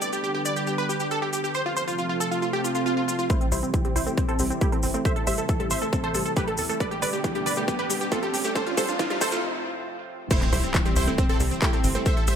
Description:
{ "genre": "uplifting trance", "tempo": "137 BPM", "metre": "4/4", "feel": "straight", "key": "unclear", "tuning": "A4 = 440 Hz", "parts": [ { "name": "supersaw stab", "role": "melody", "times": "0.0-12.4 s", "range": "C4 to E5", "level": "-27 LUFS", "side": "right 1 dB", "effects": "sidechain pumping, low-pass filter, ping-pong delay" }, { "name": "lush unison pad", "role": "sustained chords", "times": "0.0-12.4 s", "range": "A2 to B4", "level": "-33 LUFS", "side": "equal", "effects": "chorus, sidechain pumping" }, { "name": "maracas", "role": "percussion", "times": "0.0-12.4 s", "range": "none", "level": "-34 LUFS", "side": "left 3 dB", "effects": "none" }, { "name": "swell, riser and impact", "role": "sound effects", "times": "2.6-12.1 s", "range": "none", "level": "-33 LUFS", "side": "right 1 dB", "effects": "none" }, { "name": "analog pluck", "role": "arpeggios", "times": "3.3-12.3 s", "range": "E3 to A4", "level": "-32 LUFS", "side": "right 2 dB", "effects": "chorus, sidechain pumping, ping-pong delay" }, { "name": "big-room dance drum kit", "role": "drums", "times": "3.3-12.4 s", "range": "crash cymbal, handclaps, hi-hat", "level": "-32 LUFS", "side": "right 2 dB", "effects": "none" }, { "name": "electronic kick drum", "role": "drums", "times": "3.3-12.1 s", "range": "none", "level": "-25 LUFS", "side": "equal", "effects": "none" }, { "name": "tight sequencer bass", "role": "bass", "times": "3.5-12.4 s", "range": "F1 to E2", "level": "-29 LUFS", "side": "equal", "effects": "sidechain pumping" } ], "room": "light reverb", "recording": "high-pass filter", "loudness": "-22 LUFS", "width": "side -8 dB against mid", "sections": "0.0-3.3 A section; 3.3-10.3 B section; 10.3-12.4 C section", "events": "swell 2.6-3.3; build-up 3.3-10.3; riser 3.3-9.4; filter sweep on supersaw synth 3.3-10.3; filter sweep on synth pluck 3.3-10.3; filter sweep 3.3-10.3; drum fill 6.8-9.4; break 9.4-10.3; drop 10.3-12.4; impact 10.3-12.1", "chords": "0.0 G; 1.5 F; 3.3 C; 5.1 Am; 6.8 G; 8.6 F; 10.3 C", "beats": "0.23 0.67 1.11 | 1.55 1.99 2.42 2.86 | 3.30 3.74 4.18 4.61 | 5.05 5.49 5.93 6.37 | 6.80 7.24 7.68 8.12 | 8.56 8.99 9.43 9.87 | 10.31 10.75 11.18 11.62 | 12.06" }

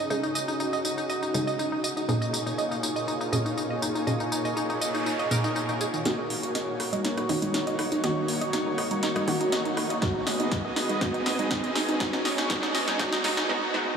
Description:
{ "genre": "progressive house", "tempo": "121 BPM", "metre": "4/4", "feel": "straight", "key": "Eb minor", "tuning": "A4 = 442 Hz", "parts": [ { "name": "lush unison pad", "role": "sustained chords", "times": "0.0-13.5 s", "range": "Bb3 to Eb5", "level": "-31 LUFS", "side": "equal", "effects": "chorus, sidechain pumping" }, { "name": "analog pluck", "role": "arpeggios", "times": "0.0-13.4 s", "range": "Eb3 to Eb5", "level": "-30 LUFS", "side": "right 1 dB", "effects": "chorus, sidechain pumping, analog delay" }, { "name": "wide unison pluck", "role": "stabs", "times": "0.0-14.0 s", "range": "Ab2 to Ab4", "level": "-32 LUFS", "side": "right 1 dB", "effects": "vintage 12-bit sampler grit, sidechain pumping, analog delay" }, { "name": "deep house drum kit", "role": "drums", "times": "0.1-13.5 s", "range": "hi-hat, rim click, snare drum, tambourine", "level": "-32 LUFS", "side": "equal", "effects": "overdrive, high-pass filter on perc, high-pass filter on snare, high-pass filter on hats" }, { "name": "noise sweep and riser", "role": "sound effects", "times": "4.5-13.5 s", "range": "none", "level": "-36 LUFS", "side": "right 1 dB", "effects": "none" }, { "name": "congas", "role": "percussion", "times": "6.9-13.2 s", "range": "none", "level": "-38 LUFS", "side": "right 1 dB", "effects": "none" }, { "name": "electronic kick drum", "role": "drums", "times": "10.0-13.1 s", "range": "none", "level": "-32 LUFS", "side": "left 1 dB", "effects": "overdrive" } ], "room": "wet huge ambient reverb, RT60 8.7 s", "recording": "dreamy mix soaked in reverb, high-pass filter, small room ambience", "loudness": "-24 LUFS", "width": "side -6 dB against mid", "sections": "0.0-6.1 A section; 6.1-14.0 B section", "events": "filter sweep on analog synth pad 0.0-6.1; noise sweep 4.5-6.1; build-up 6.1-14.0; drum fill 6.1-13.5; filter sweep on synth arpeggio sound 6.1-14.0; filter sweep on synth pluck 6.1-14.0; filter sweep 6.1-14.0", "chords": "0.0 Dbsus2; 2.1 Bbm7; 6.1 Ebm7; 10.0 Abm7", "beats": "| 0.10 0.60 1.10 1.59 | 2.09 2.58 3.08 3.58 | 4.07 4.57 5.06 5.56 | 6.05 6.55 7.05 7.54 | 8.04 8.53 9.03 9.53 | 10.02 10.52 11.01 11.51 | 12.01 12.50 13.00 13.49" }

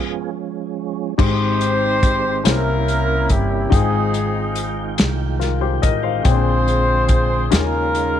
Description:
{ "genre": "slow gospel", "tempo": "47 BPM (dotted quarters)", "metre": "6/8", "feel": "straight", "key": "Ab major", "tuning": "A4 = 440 Hz", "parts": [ { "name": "tonewheel organ", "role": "sustained chords", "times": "0.0-8.2 s", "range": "C3 to G5", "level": "-26 LUFS", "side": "right 11 dB", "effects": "slow rotary speaker, overdrive, chorus vibrato" }, { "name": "mellow horn section", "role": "melody", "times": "1.2-8.2 s", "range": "G3 to C5", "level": "-20 LUFS", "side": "left 1 dB", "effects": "none" }, { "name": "warm upright piano", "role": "accompaniment", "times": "1.2-8.2 s", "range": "Ab2 to G5", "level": "-24 LUFS", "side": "left 14 dB", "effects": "none" }, { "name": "upright bass", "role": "bass", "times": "1.2-8.2 s", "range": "G1 to Eb2", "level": "-21 LUFS", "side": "equal", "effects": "none" }, { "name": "warm soul drum kit", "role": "drums", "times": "1.2-8.1 s", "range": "crash cymbal, hi-hat, kick drum, snare drum", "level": "-18 LUFS", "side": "equal", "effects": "none" } ], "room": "studio reverb", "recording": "1960s-style stereo with parts hard left and right", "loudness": "-16 LUFS", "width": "side -10 dB against mid", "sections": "0.0-1.2 A section; 1.2-8.2 B section", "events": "tonewheel organ solo 0.0-1.2; stop 0.0-1.2", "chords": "0.0 Db/F; 1.2 Abmaj7; 2.4 C7b9; 3.7 Fm9/Ab; 6.2 Bb13; 7.5 Eb9sus4", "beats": "| 1.18 2.45 | 3.72 4.98 | 6.25 7.51" }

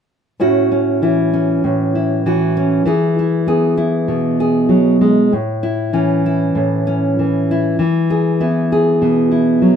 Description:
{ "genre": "folk, solo fingerstyle acoustic guitar", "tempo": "98 BPM", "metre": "4/4", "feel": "straight", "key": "A major", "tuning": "A4 = 440 Hz", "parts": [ { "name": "nylon-string guitar", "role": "solo", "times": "0.4-9.8 s", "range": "A2 to G#4", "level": "-13 LUFS", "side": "equal", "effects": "none" } ], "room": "moderate studio reverb, RT60 0.5 s", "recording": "minimal, uncompressed stereo recording", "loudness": "-13 LUFS", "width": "side -7 dB against mid", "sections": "0.4-5.3 A section; 5.3-9.8 B section", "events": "none", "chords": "0.4 A6; 2.9 E; 5.3 A; 7.8 E", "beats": "| 0.39 1.01 1.63 2.24 | 2.85 3.46 4.08 4.69 | 5.31 5.93 6.55 7.17 | 7.79 8.40 9.01 9.62" }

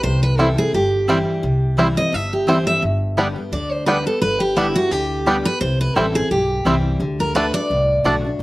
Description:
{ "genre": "bluegrass", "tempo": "172 BPM", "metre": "4/4", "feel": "swing 55% on 8ths", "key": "unclear", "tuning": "A4 = 440 Hz", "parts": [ { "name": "picked steel-string acoustic guitar", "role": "melody", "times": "0.0-8.3 s", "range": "E4 to E5", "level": "-20 LUFS", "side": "equal", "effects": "slapback echo" }, { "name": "picked steel-string acoustic guitar", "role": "accompaniment", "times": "0.0-8.4 s", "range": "G2 to G4", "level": "-24 LUFS", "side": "left 2 dB", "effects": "none" }, { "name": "upright bass", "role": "bass", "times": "0.0-8.4 s", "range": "G1 to D2", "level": "-23 LUFS", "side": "equal", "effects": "none" }, { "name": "bluegrass banjo", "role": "arpeggios", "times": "0.4-8.1 s", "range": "G3 to E4", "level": "-20 LUFS", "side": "right 1 dB", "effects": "slapback echo" }, { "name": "mandolin", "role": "stabs", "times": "0.4-8.2 s", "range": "A3 to A5", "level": "-24 LUFS", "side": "right 2 dB", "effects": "slapback echo" } ], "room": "little or no reverb", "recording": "recorded outdoors, with no room sound", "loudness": "-16 LUFS", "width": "side -19 dB against mid", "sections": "0.0-8.4 A section", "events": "none", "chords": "0.0 C; 2.8 G; 5.6 C; 7.0 D", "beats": "| 0.04 0.39 0.74 1.08 | 1.43 1.78 2.13 2.48 | 2.83 3.18 3.53 3.88 | 4.22 4.57 4.92 5.27 | 5.61 5.96 6.31 6.66 | 7.00 7.35 7.70 8.05 | 8.39" }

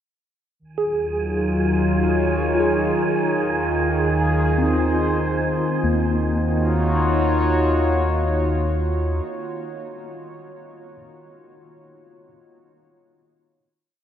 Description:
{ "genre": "ambient", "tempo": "69 BPM", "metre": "3/4", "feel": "straight", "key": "Eb dorian", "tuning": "A4 = 440 Hz", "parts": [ { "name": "warbly tape-like pad", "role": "sustained chords", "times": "0.6-9.2 s", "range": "Eb3 to Db5", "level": "-22 LUFS", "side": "equal", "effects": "chorus, built-in reverb" }, { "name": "round analog bass", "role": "bass", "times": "0.6-9.2 s", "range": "Eb2", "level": "-24 LUFS", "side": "equal", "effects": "none" }, { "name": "wind-like tuned noise texture", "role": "texture", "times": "1.0-5.9 s", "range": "Ab5", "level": "-29 LUFS", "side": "right 4 dB", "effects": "built-in reverb" }, { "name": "mellow tine electric piano", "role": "arpeggios", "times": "0.8-11.0 s", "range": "Bb3 to Ab4", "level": "-26 LUFS", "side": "equal", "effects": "overdrive, medium stereo tremolo, analog delay" } ], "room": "wet huge ambient reverb, RT60 7.4 s", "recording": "dreamy mix soaked in reverb, nothing above 10.3 kHz", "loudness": "-18 LUFS", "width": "side -9 dB against mid", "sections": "0.6-5.8 A section; 5.8-8.5 final chord", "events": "none", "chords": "0.6 Ebm9; 3.2 Ab6/Eb; 5.8 Ebm9", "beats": "| 0.63 1.50 2.37 | 3.23 4.10 4.97 | 5.84 6.71 7.58" }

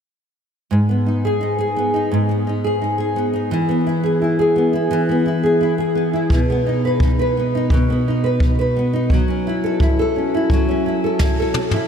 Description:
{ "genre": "acoustic pop", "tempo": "86 BPM", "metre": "4/4", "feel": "straight", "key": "unclear", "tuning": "A4 = 441 Hz", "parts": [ { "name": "nylon-string guitar", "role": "accompaniment", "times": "0.7-11.9 s", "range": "G#2 to B4", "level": "-16 LUFS", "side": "equal", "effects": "double-tracked left and right" }, { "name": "jazz brush drum kit", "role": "drums", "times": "6.3-11.9 s", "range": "kick drum, snare drum, toms", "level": "-18 LUFS", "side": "equal", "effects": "none" } ], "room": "wet huge ambient reverb, RT60 6.2 s", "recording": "dreamy mix soaked in reverb", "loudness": "-16 LUFS", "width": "side -7 dB against mid", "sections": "0.7-11.9 A section", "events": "drum fill 11.2-11.9", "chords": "0.7 G#m; 3.5 E; 6.3 B; 9.1 F#m7", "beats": "| 0.71 1.41 2.11 2.81 | 3.51 4.21 4.91 5.61 | 6.30 7.00 7.70 8.40 | 9.10 9.80 10.50 11.20" }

